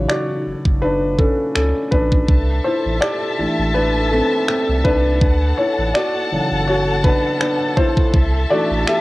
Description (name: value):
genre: contemporary R&B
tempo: 82 BPM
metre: 4/4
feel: swing 54% on 16ths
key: D major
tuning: A4 = 444 Hz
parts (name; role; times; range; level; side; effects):
- felt-muted upright piano; accompaniment; 0.0-9.0 s; C#3 to E5; -18 LUFS; equal; cassette tape
- warm sub bass; bass; 0.0-8.8 s; F#1 to D2; -20 LUFS; equal; none
- trap drum kit; drums; 0.1-9.0 s; finger snaps, kick drum; -18 LUFS; equal; cassette tape
- clear studio string section; sustained chords; 2.3-9.0 s; A4 to A5; -23 LUFS; left 1 dB; cassette tape
room: light reverb, small room ambience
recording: home recording on cassette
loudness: -15 LUFS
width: side -19 dB against mid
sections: 0.0-9.0 A section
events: felt piano solo 0.0-9.0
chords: 0.0 Dmaj7; 2.3 C69; 5.2 Dmaj7; 8.1 C69